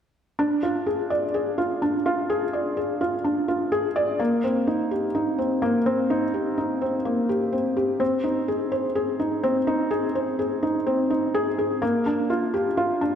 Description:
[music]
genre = electronica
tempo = 126 BPM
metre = 4/4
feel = straight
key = unclear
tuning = A4 = 442 Hz
[part]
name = felt-muted upright piano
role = solo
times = 0.4-13.2 s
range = Bb3 to D5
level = -22 LUFS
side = equal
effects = none
[sound]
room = wet scoring stage reverb, RT60 1.6 s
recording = none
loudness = -22 LUFS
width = side -8 dB against mid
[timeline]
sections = 0.4-13.2 A section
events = none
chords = none

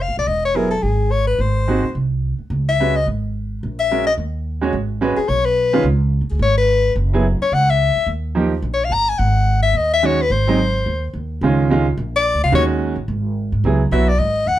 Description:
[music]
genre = jazz, small-group swing and bop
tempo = 215 BPM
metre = 4/4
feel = swing 58% on 8ths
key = C# minor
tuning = A4 = 440 Hz
[part]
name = warm soprano saxophone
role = melody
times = 0.0-14.6 s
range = G#4 to A#5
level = -18 LUFS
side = left 4 dB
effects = none
[part]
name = upright bass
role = bass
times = 0.0-14.6 s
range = E1 to G#2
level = -19 LUFS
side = right 1 dB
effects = none
[part]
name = bright upright piano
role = accompaniment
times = 0.5-14.1 s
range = D#3 to C#5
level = -19 LUFS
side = right 4 dB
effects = none
[sound]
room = light reverb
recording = none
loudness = -16 LUFS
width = side -13 dB against mid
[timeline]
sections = 0.0-4.7 A section; 4.7-13.6 B section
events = none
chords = 0.3 E; 1.4 G#7; 2.5 C#m7; 3.6 A#m7b5; 4.2 D#m7; 4.7 G#m7; 5.8 C#7(no3); 7.0 F#7(no3); 8.1 D#; 9.2 G#5; 10.3 G#; 11.4 C#add9; 12.0 A#; 12.5 D#m7; 13.1 N.C.; 13.6 C#m11

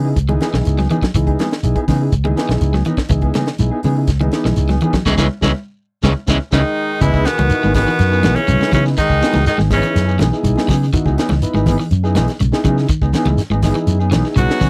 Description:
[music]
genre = afrobeat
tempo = 122 BPM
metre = 4/4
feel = straight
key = C# minor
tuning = A4 = 438 Hz
[part]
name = combo organ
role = accompaniment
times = 0.0-14.6 s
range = B3 to B4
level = -26 LUFS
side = equal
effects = none
[part]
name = mellow electric guitar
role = stabs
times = 0.0-14.7 s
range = E3 to G#4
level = -25 LUFS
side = equal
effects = tremolo
[part]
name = fingered electric bass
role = bass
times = 0.0-14.7 s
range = G#1 to C#3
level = -19 LUFS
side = equal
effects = none
[part]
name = tight funk drum kit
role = drums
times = 0.2-14.7 s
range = hi-hat, kick drum, snare drum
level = -23 LUFS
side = equal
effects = none
[part]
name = shekere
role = percussion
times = 0.2-14.7 s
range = none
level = -25 LUFS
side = equal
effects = none
[part]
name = electric guitar at the edge of break-up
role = arpeggios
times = 0.3-14.7 s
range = C#3 to G#3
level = -24 LUFS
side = equal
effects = none
[part]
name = congas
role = percussion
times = 0.3-14.7 s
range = none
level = -24 LUFS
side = equal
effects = none
[part]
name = raspy tenor saxophone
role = melody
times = 6.5-10.2, 14.4-14.7 s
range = B3 to F#4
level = -21 LUFS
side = equal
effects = none
[part]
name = raspy baritone saxophone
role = second line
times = 6.5-10.2, 14.4-14.7 s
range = B2 to F#3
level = -28 LUFS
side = equal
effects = none
[part]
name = warm alto saxophone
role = second line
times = 6.5-10.2, 14.4-14.7 s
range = D#3 to B3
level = -27 LUFS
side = equal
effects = none
[sound]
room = little or no reverb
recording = dry, close 1970s-style studio recording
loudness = -16 LUFS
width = mono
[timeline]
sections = 0.0-7.0 A section; 7.0-14.7 B section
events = band accent 5.1-7.0; drum fill 6.5-7.0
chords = 0.0 C#m9

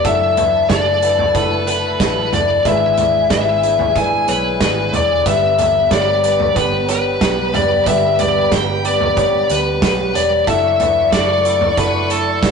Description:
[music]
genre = piano-driven pop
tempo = 92 BPM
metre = 4/4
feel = straight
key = unclear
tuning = A4 = 440 Hz
[part]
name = high-gain lead guitar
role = melody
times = 0.0-12.5 s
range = A4 to G#5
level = -15 LUFS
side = left 4 dB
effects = distortion
[part]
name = dark studio violin section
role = second line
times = 0.0-12.5 s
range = G#4 to C#6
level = -27 LUFS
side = right 2 dB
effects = none
[part]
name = clear baby grand piano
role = accompaniment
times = 0.0-12.5 s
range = G2 to D5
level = -22 LUFS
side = right 3 dB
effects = none
[part]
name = dark studio string section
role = sustained chords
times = 0.0-12.5 s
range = D3 to G4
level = -29 LUFS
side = right 1 dB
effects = none
[part]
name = vintage muted fingered electric bass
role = bass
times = 0.0-12.5 s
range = E1 to D2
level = -25 LUFS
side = right 2 dB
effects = none
[part]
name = loose indie drum kit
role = drums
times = 0.0-12.5 s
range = hi-hat, kick drum, snare drum, toms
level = -20 LUFS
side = right 2 dB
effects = none
[sound]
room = wet stone room reverb, RT60 1.2 s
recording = rough rehearsal-room recording, warm saturation, nothing above 10.7 kHz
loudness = -13 LUFS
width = side -5 dB against mid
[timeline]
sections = 0.0-12.5 A section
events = none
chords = 0.1 Dadd9/F#; 2.7 E7/G#; 5.3 G; 10.5 Dadd9/F#

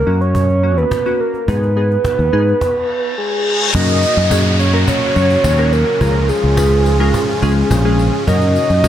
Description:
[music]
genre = dance-pop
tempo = 106 BPM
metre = 4/4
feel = straight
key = F# major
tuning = A4 = 438 Hz
[part]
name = soft octave-layered synth lead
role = melody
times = 0.0-8.9 s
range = G#4 to D#5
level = -17 LUFS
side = right 1 dB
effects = chorus, tape echo
[part]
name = fingered electric bass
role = bass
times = 0.0-8.9 s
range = A#1 to G#2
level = -15 LUFS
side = equal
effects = none
[part]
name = glassy digital keys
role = accompaniment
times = 0.1-8.9 s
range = G#3 to C#5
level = -21 LUFS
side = left 2 dB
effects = chorus
[part]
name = cajon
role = drums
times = 0.2-8.9 s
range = none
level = -23 LUFS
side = equal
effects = none
[part]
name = reverse cymbal and downlifter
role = sound effects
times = 2.8-8.3 s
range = none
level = -22 LUFS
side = left 2 dB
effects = none
[part]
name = supersaw chords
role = sustained chords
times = 3.7-8.9 s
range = G#2 to F#4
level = -22 LUFS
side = equal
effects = none
[part]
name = tambourine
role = percussion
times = 3.7-8.9 s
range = none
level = -34 LUFS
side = left 6 dB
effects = none
[sound]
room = digital ambience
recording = none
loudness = -12 LUFS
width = side -11 dB against mid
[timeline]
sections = 0.0-3.7 A section; 3.7-8.9 B section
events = reverse cymbal 2.8-3.7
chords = 0.0 F#; 1.5 G#m; 3.7 F#; 6.0 C#; 8.3 F#

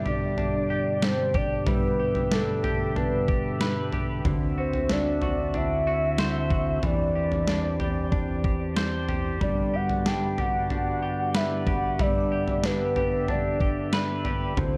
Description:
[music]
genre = dream pop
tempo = 93 BPM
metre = 4/4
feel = straight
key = G major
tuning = A4 = 438 Hz
[part]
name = soft octave-layered synth lead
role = melody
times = 0.0-14.8 s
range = A4 to G5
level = -31 LUFS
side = equal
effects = chorus, tremolo, tape echo
[part]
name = tonewheel organ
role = sustained chords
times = 0.0-14.8 s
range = D2 to E5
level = -31 LUFS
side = equal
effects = slow rotary speaker
[part]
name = clean electric guitar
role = arpeggios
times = 0.0-14.8 s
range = D3 to C5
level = -34 LUFS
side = equal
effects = lush chorus, tape echo
[part]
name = detuned 8-bit digital drum machine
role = drums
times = 0.1-14.7 s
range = kick drum, snare drum, toms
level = -31 LUFS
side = equal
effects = none
[part]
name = vibraphone with medium mallets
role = texture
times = 9.7-13.6 s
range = D5 to B5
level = -45 LUFS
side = equal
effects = none
[sound]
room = light reverb, digital ambience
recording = dark, warm production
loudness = -26 LUFS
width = mono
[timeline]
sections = 0.0-14.8 A section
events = none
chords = 0.0 G; 4.3 D7; 6.8 Cadd9/E; 9.4 G

